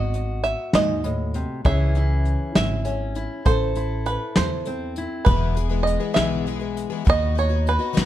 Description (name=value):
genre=indie folk with a building arrangement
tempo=66 BPM (dotted quarters)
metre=6/8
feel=straight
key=E major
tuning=A4 = 439 Hz
part: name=bluegrass banjo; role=melody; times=0.0-8.1 s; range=B4 to E5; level=-25 LUFS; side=right 4 dB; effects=analog delay
part: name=fingerpicked steel-string acoustic guitar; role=accompaniment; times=0.0-5.2 s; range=G#2 to A4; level=-28 LUFS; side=left 3 dB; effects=none
part: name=upright bass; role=bass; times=0.0-8.1 s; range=E1 to F#2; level=-24 LUFS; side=equal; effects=none
part: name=soft brush drum kit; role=drums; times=0.1-8.1 s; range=hi-hat, kick drum, snare drum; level=-22 LUFS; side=equal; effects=none
part: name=picked plugged-in twelve-string acoustic guitar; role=accompaniment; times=5.3-8.1 s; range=E2 to G#4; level=-26 LUFS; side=left 8 dB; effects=none
room=light reverb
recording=dark, warm production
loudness=-20 LUFS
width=side -12 dB against mid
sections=0.0-8.1 A section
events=none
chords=0.0 G#7; 1.6 C#m; 3.5 Am; 5.3 E; 7.1 B/D#